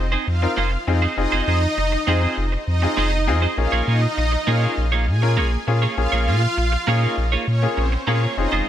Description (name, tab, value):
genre	pop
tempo	100 BPM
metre	4/4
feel	straight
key	unclear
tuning	A4 = 437 Hz
part	clear baby grand piano	accompaniment	0.0-8.7 s	Bb3 to Bb4	-26 LUFS	left 5 dB	none
part	warm sub bass	bass	0.0-8.6 s	F1 to Bb2	-20 LUFS	equal	none
part	twelve-string electric guitar	riff	0.1-8.7 s	Ab3 to Db5	-25 LUFS	right 5 dB	wide subtle chorus
part	supersaw pad	melody	0.3-8.6 s	C4 to Ab5	-24 LUFS	right 1 dB	digital delay
room	digital ambience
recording	none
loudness	-18 LUFS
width	side -11 dB against mid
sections	0.0-8.7 A section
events	none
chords	0.0 Fm7; 3.6 Bbm7